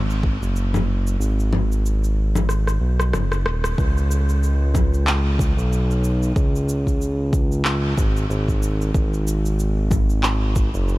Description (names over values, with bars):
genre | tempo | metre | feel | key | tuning
organic downtempo | 93 BPM | 4/4 | swing 57% on 16ths | unclear | A4 = 442 Hz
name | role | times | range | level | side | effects
smooth synth bass | bass | 0.0-11.0 s | D#1 to C#2 | -20 LUFS | equal | tube saturation
electronic shaker, congas, rim click and handclaps | drums | 0.1-11.0 s | none | -27 LUFS | left 1 dB | none
electronic kick drum | drums | 0.2-10.7 s | none | -20 LUFS | equal | overdrive
room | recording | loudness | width
little or no reverb | none | -18 LUFS | side -19 dB against mid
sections
0.0-3.8 A section; 3.8-11.0 B section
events
kick drops out 1.2-3.8; drum fill 2.5-3.8; band accent 3.6-3.9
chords
none